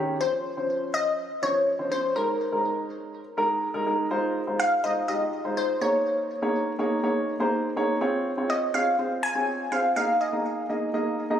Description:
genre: pop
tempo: 123 BPM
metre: 4/4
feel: straight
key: F minor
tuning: A4 = 440 Hz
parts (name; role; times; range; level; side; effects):
- dark baby grand piano; accompaniment; 0.0-11.4 s; Eb3 to Eb5; -26 LUFS; right 1 dB; none
- glassy wavetable pluck; melody; 0.2-10.9 s; Bb4 to Ab5; -26 LUFS; left 1 dB; chorus, ping-pong delay
room: moderate lush hall reverb, RT60 2.8 s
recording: recorded on a phone in the room, club reverb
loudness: -23 LUFS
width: side -9 dB against mid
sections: 0.0-4.1 A section; 4.1-11.4 B section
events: none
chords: 0.2 Dbmaj7; 2.2 Absus2; 4.1 Fm7; 5.8 Eb7sus4; 8.0 Dbmaj7; 10.0 Absus2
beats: | 0.20 0.69 1.18 1.67 | 2.16 2.64 3.13 3.62 | 4.11 4.59 5.08 5.57 | 6.06 6.55 7.03 7.52 | 8.01 8.50 8.98 9.47 | 9.96 10.45 10.94

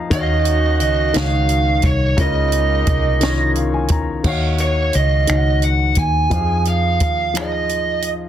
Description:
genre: slow six-eight R&B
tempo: 58 BPM (dotted quarters)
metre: 6/8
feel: straight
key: Eb dorian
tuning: A4 = 438 Hz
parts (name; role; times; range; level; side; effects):
- warm grand piano; accompaniment; 0.0-8.3 s; Db3 to Bb5; -23 LUFS; left 4 dB; none
- vintage muted fingered electric bass; bass; 0.0-8.3 s; C2 to F2; -19 LUFS; equal; none
- biting lead guitar; melody; 0.1-8.1 s; Db5 to Ab5; -20 LUFS; right 4 dB; overdrive, slapback echo
- mellow horn section; stabs; 0.1-3.9 s; Ab3 to Gb4; -28 LUFS; right 5 dB; none
- compact cocktail drum kit; drums; 0.1-8.2 s; crash cymbal, finger snaps, hi-hat, kick drum, snare drum; -21 LUFS; equal; soft clipping on snare
room: small room ambience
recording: dense, heavily limited modern master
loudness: -15 LUFS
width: side -10 dB against mid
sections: 0.0-4.2 A section; 4.2-8.3 B section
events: grand piano fill 3.2-4.2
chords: 0.1 Ebm7; 2.2 Db69; 4.2 Ebm7; 6.3 Fm7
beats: | 0.11 1.14 | 2.17 3.21 | 4.24 5.28 | 6.31 7.35

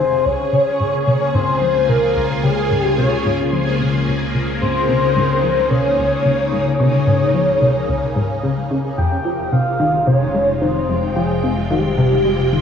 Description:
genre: ambient, sequencer-driven space music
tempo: 110 BPM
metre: 4/4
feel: straight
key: unclear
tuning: A4 = 440 Hz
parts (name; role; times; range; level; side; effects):
- pulse-width lead; melody; 0.0-12.6 s; G4 to G5; -18 LUFS; left 1 dB; chorus, tape echo
- phased string machine; sustained chords; 0.0-12.6 s; C3 to G5; -22 LUFS; left 1 dB; ensemble chorus, phaser
- plucky analog bass; riff; 0.0-12.6 s; Db2 to Ab3; -20 LUFS; left 1 dB; lush chorus, tape echo
- fat analog bass; bass; 0.0-12.6 s; F1 to Db2; -24 LUFS; left 2 dB; none
room: wet plate reverb, RT60 2.3 s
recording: worn, warbling old tape, cassette tape, warbly pitch drift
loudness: -15 LUFS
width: side -7 dB against mid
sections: 0.0-12.6 A section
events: filter sweep on analog synth bass 0.0-12.6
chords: 0.3 Db6; 9.0 Fmadd9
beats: | 0.25 0.80 1.34 1.89 | 2.43 2.98 3.52 4.07 | 4.62 5.16 5.71 6.25 | 6.80 7.34 7.89 8.43 | 8.98 9.52 10.07 10.62 | 11.16 11.71 12.25

